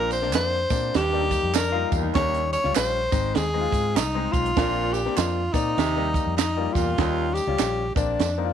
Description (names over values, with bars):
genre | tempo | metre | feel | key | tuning
uptempo 1960s-style soul | 99 BPM | 4/4 | swing 61% on 8ths | Eb major | A4 = 440 Hz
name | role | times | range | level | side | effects
breathy tenor saxophone | melody | 0.0-8.5 s | D4 to Db5 | -25 LUFS | equal | none
clear baby grand piano | accompaniment | 0.0-8.5 s | G3 to D5 | -30 LUFS | left 14 dB | none
warm baritone saxophone | riff | 0.0-7.3 s | Eb2 to C3 | -32 LUFS | right 11 dB | none
vintage muted fingered electric bass | bass | 0.0-8.5 s | Ab1 to Bb2 | -28 LUFS | equal | none
compact cocktail drum kit | drums | 0.1-8.4 s | hi-hat, kick drum, snare drum | -26 LUFS | right 4 dB | none
tambourine and handclaps | percussion | 0.1-8.4 s | none | -34 LUFS | right 15 dB | none
semi-hollow electric guitar | riff | 1.5-2.3 s | D4 to F4 | -30 LUFS | left 14 dB | none
room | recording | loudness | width
little or no reverb | 1960s-style stereo with parts hard left and right | -21 LUFS | side -8 dB against mid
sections
0.0-8.5 A section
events
none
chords
0.0 Bbadd9; 0.9 Eb; 2.2 Eb7; 3.1 Ab; 4.6 Bbadd9; 5.8 Eb; 7.0 Eb7; 7.9 Bbadd9